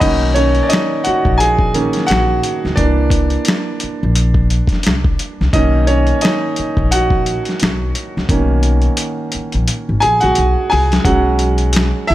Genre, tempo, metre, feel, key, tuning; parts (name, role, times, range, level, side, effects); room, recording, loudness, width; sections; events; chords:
R&B, neo-soul; 87 BPM; 4/4; swing 58% on 16ths; B major; A4 = 443 Hz
clear concert grand piano; accompaniment; 0.0-12.1 s; D#3 to B5; -16 LUFS; right 1 dB
upright bass; bass; 0.0-12.1 s; G#1 to C#2; -16 LUFS; equal
dusty soul sampler-style drum kit; drums; 0.0-12.1 s; crash cymbal, finger snaps, hi-hat, kick drum, snare drum; -18 LUFS; left 1 dB; overdrive
light reverb; -12 LUFS; side -15 dB against mid
0.0-11.1 A section; 11.1-12.1 B section
grand piano solo 0.0-11.1, 11.1-12.1; drum fill 8.3-11.1
0.0 Bmaj7; 2.8 C9; 5.5 Bmaj7; 11.1 B5